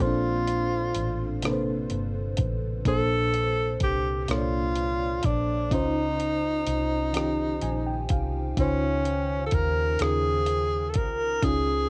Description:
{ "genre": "slow six-eight R&B", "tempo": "42 BPM (dotted quarters)", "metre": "6/8", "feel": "straight", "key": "unclear", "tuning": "A4 = 440 Hz", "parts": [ { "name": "breathy tenor saxophone", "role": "melody", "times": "0.0-11.9 s", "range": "Db4 to Bb4", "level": "-30 LUFS", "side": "equal", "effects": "cassette tape" }, { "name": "FM electric piano with soft pad layer", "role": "accompaniment", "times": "0.0-11.9 s", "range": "Bb2 to Ab5", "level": "-32 LUFS", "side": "equal", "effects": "chorus, tremolo, cassette tape" }, { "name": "vintage muted fingered electric bass", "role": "bass", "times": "0.0-11.9 s", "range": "G1 to Eb2", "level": "-32 LUFS", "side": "equal", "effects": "none" }, { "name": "dusty soul sampler-style drum kit", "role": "drums", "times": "0.5-11.6 s", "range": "hi-hat, kick drum, rim click", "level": "-31 LUFS", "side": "equal", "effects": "cassette tape" } ], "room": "light reverb", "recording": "home recording on cassette", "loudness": "-26 LUFS", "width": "mono", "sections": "0.0-11.9 A section", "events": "FM electric piano fill 7.1-8.6", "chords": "0.0 Bbmaj9; 5.7 Dbmaj9" }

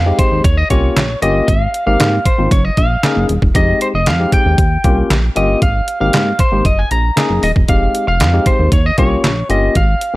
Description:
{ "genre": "early-eighties boogie funk", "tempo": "116 BPM", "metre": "4/4", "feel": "straight", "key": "unclear", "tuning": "A4 = 440 Hz", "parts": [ { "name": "lightly driven lead guitar", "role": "melody", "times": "0.0-10.1 s", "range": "C5 to Bb5", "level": "-17 LUFS", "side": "equal", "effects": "slapback echo" }, { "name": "chorused synth bass", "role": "bass", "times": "0.0-10.0 s", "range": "Eb1 to Ab2", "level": "-15 LUFS", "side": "equal", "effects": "none" }, { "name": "barky tine electric piano", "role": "accompaniment", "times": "0.1-10.2 s", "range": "Ab3 to Ab4", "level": "-19 LUFS", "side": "left 3 dB", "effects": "overdrive" }, { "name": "detuned 8-bit digital drum machine", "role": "drums", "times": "0.2-10.1 s", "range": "handclaps, hi-hat, kick drum, snare drum", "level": "-15 LUFS", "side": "equal", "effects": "none" } ], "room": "digital ambience", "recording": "none", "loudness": "-11 LUFS", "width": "side -19 dB against mid", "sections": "0.0-10.2 A section", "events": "none", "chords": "0.4 Eb7; 1.5 Abmaj9; 2.5 Gb69; 3.5 Fm7; 4.6 Eb7; 5.6 Abmaj9; 6.7 Gb69; 7.7 Fm7; 8.7 Eb7" }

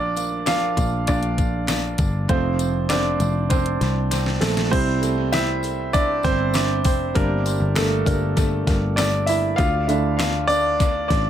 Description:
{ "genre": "piano-driven pop", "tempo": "99 BPM", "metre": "4/4", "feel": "straight", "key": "C mixolydian", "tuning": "A4 = 439 Hz", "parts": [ { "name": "warm concert grand piano", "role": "accompaniment", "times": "0.0-11.3 s", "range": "D3 to F5", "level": "-22 LUFS", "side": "right 2 dB", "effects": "analog delay" }, { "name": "picked electric bass", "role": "bass", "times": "0.0-11.3 s", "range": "F1 to D2", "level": "-24 LUFS", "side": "left 1 dB", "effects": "none" }, { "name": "pop drum kit", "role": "drums", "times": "0.2-11.2 s", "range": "crash cymbal, handclaps, hi-hat, kick drum, snare drum", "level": "-24 LUFS", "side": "left 1 dB", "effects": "overdrive, analog delay" }, { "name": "tambourine", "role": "percussion", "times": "0.2-10.9 s", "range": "none", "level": "-37 LUFS", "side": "left 10 dB", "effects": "analog delay" } ], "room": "moderate spring reverb, RT60 1.9 s", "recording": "echo-heavy mix", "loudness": "-18 LUFS", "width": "side -10 dB against mid", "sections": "0.0-4.7 A section; 4.7-11.3 B section", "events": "grand piano solo 0.0-4.7, 4.7-11.3; drum fill 4.1-4.7", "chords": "0.0 Bb; 2.3 F; 4.7 C; 7.2 Gm; 9.6 Dm" }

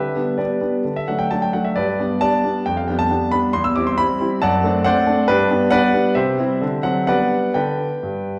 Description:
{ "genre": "classical-period piano sonatina", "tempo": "136 BPM", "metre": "4/4", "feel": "uneven beats, rubato", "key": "G major", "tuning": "A4 = 440 Hz", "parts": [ { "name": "clear concert grand piano", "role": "solo", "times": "0.0-8.4 s", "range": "E2 to E6", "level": "-19 LUFS", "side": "equal", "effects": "none" } ], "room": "wet recital hall reverb, RT60 1.4 s", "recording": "heard from further back in the room", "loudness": "-19 LUFS", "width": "mono", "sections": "0.0-8.4 A section", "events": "none", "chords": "0.0 G/D; 0.9 D; 1.8 G; 2.7 G7/F; 3.5 C/E; 4.4 D7/F#; 5.3 G; 6.2 C; 6.6 D7; 7.1 G" }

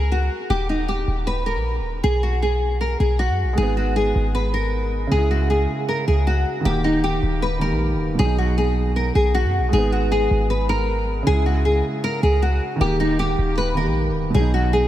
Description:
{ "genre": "hip hop, trap", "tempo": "156 BPM", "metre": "4/4", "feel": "half-time", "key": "G# minor", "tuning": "A4 = 440 Hz", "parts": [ { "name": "nylon-string guitar", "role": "melody", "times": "0.0-14.9 s", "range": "D#4 to B4", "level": "-22 LUFS", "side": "left 1 dB", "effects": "analog chorus, analog delay" }, { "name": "clean 808-style bass", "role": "bass", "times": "0.0-14.9 s", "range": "D#1 to F#2", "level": "-21 LUFS", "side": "equal", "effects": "none" }, { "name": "felt-muted upright piano", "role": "accompaniment", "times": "3.5-14.9 s", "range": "B2 to G4", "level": "-24 LUFS", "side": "right 2 dB", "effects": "none" } ], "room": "moderate huge ambient reverb, RT60 4.6 s", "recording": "dreamy mix soaked in reverb", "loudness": "-18 LUFS", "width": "side -12 dB against mid", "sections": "0.0-3.6 A section; 3.6-14.9 B section", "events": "none", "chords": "0.0 C#5; 0.5 D#; 2.0 B5; 3.6 G#m; 5.1 C#m; 6.7 D#; 8.2 B; 9.7 G#m; 11.3 C#m; 12.8 D#; 14.3 B" }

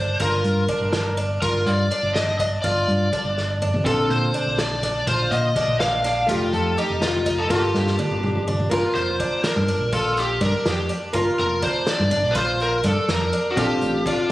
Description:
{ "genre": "progressive instrumental, band music in an uneven meter", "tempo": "247 BPM (eighths)", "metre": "5/8", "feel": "straight", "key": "G minor", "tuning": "A4 = 442 Hz", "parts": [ { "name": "lead guitar through a small cranked amp", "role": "melody", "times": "0.0-14.3 s", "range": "F4 to F5", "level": "-23 LUFS", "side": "equal", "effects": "overdrive, plate reverb, tape echo" }, { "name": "picked twelve-string acoustic guitar", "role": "arpeggios", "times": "0.0-14.3 s", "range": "D4 to F4", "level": "-27 LUFS", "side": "equal", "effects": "plate reverb, tape echo" }, { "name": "deep dub fingered electric bass", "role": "bass", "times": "0.0-14.0 s", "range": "F1 to Bb2", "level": "-24 LUFS", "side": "equal", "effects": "none" }, { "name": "unplugged drum kit", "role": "drums", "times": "0.2-14.3 s", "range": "crash cymbal, hi-hat, kick drum, snare drum, toms", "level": "-28 LUFS", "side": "equal", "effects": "none" }, { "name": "archtop guitar, miked and amplified", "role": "accompaniment", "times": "3.8-14.3 s", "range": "D3 to Bb4", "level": "-26 LUFS", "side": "equal", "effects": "plate reverb" } ], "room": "moderate studio reverb, RT60 0.7 s", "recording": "recorded on a phone in the room, studio reverb, compression", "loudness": "-19 LUFS", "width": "side -16 dB against mid", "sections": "0.0-8.7 A section; 8.7-14.3 B section", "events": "drum fill 3.4-3.9, 7.7-8.7; lead electric guitar solo 8.7-14.3", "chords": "0.0 Gm7; 3.9 Bbmaj9; 6.3 F7; 7.5 Gm7; 13.6 Bbmaj9" }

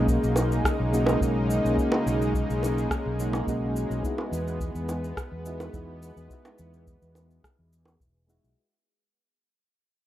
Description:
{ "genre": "sunset chillout", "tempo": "106 BPM", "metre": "4/4", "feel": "straight", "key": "unclear", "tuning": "A4 = 440 Hz", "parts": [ { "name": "soft electric-piano-like synth keys", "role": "accompaniment", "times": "0.0-8.6 s", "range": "G#3 to F#4", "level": "-31 LUFS", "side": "right 1 dB", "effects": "chorus, tremolo, auto-pan, tape echo" }, { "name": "lush unison pad", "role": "sustained chords", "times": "0.0-8.5 s", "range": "C#3 to D#4", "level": "-29 LUFS", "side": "equal", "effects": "chorus" }, { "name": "fretless electric bass", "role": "bass", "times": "0.0-8.5 s", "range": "E1 to E2", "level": "-29 LUFS", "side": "equal", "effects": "analog chorus" }, { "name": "electronic cabasa and rim click", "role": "drums", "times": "0.1-8.5 s", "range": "none", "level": "-34 LUFS", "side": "left 1 dB", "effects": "none" }, { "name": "electronic kick drum", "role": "drums", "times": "0.1-8.1 s", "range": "none", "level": "-30 LUFS", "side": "equal", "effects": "none" }, { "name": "bongos", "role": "percussion", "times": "0.4-8.0 s", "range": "none", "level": "-30 LUFS", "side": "right 1 dB", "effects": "none" } ], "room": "wet small room reverb, RT60 0.5 s", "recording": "rough home demo mix", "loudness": "-24 LUFS", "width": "side -13 dB against mid", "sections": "0.0-8.6 A section", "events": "fade-out 0.0-8.6", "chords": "0.0 Bmaj13; 4.0 Emaj7" }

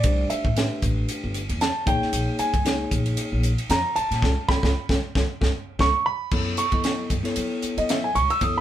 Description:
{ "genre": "electric jazz fusion", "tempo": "115 BPM", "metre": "4/4", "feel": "swing 56% on 16ths", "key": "unclear", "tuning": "A4 = 440 Hz", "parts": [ { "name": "dark baby grand piano", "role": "melody", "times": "0.0-8.6 s", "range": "D5 to E6", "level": "-24 LUFS", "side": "right 2 dB", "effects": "none" }, { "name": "bell-like tine electric piano", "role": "accompaniment", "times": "0.0-8.6 s", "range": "A3 to D#5", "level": "-29 LUFS", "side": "left 2 dB", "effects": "none" }, { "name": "upright bass", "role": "bass", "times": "0.0-8.6 s", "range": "G1 to F#3", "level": "-26 LUFS", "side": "equal", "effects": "none" }, { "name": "crisp fusion drum kit", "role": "drums", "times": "0.0-8.5 s", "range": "crash cymbal, hi-hat, kick drum, ride cymbal, snare drum", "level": "-25 LUFS", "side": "equal", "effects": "none" } ], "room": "moderate studio reverb, RT60 0.5 s", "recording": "band playing live in one room", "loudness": "-21 LUFS", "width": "side -11 dB against mid", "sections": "0.0-6.3 A section; 6.3-8.6 A section", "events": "grand piano solo 0.0-8.6; band accent 4.2-6.3; drum fill 6.1", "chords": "0.0 Am11; 1.9 Bbm7; 4.2 Dbaug7; 6.3 F#m7" }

